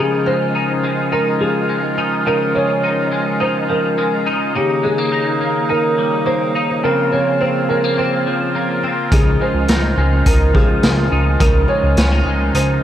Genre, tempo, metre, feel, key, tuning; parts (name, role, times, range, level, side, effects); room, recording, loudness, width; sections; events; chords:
dream pop; 105 BPM; 4/4; straight; Db major; A4 = 440 Hz
felt-muted upright piano; melody; 0.0-12.8 s; G4 to Db5; -20 LUFS; right 1 dB; tape echo
warm woodwind section; sustained chords; 0.0-12.8 s; Db3 to F4; -20 LUFS; right 2 dB
clean electric guitar; arpeggios; 0.0-12.8 s; Db3 to Eb4; -20 LUFS; left 3 dB; ensemble chorus, tape echo
chorused synth bass; bass; 9.1-12.8 s; Db2; -16 LUFS; equal
raw garage drum kit; drums; 9.1-12.7 s; hi-hat, kick drum, snare drum; -16 LUFS; equal
moderate lush hall reverb, RT60 1.7 s, studio ambience; dark, warm production; -14 LUFS; side -11 dB against mid
0.0-12.8 A section
0.0 Dbadd9; 4.5 Eb/Db; 6.8 Bbmadd9/Db; 9.1 Dbadd9